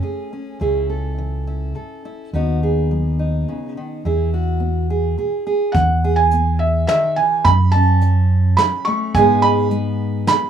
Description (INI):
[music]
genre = acoustic folk duo or small band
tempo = 105 BPM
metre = 3/4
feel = straight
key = unclear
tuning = A4 = 436 Hz
[part]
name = fingerpicked steel-string acoustic guitar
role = accompaniment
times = 0.0-10.5 s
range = F#2 to A4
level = -22 LUFS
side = right 1 dB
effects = none
[part]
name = fingered electric bass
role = bass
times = 0.6-10.2 s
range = C#2 to G#2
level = -17 LUFS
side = right 1 dB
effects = none
[part]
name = felt-muted upright piano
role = melody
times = 5.7-10.5 s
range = E5 to C#6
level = -17 LUFS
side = right 4 dB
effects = none
[part]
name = soft brush drum kit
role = drums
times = 5.7-10.4 s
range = hi-hat, kick drum, snare drum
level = -24 LUFS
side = right 1 dB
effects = none
[sound]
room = small room ambience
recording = rough home demo mix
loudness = -15 LUFS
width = side -9 dB against mid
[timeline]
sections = 0.0-5.8 A section; 5.8-10.5 B section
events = none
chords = 0.0 F#m (rootless); 0.6 C#m; 2.3 B/D#; 4.0 E; 7.5 F#m; 9.2 G#m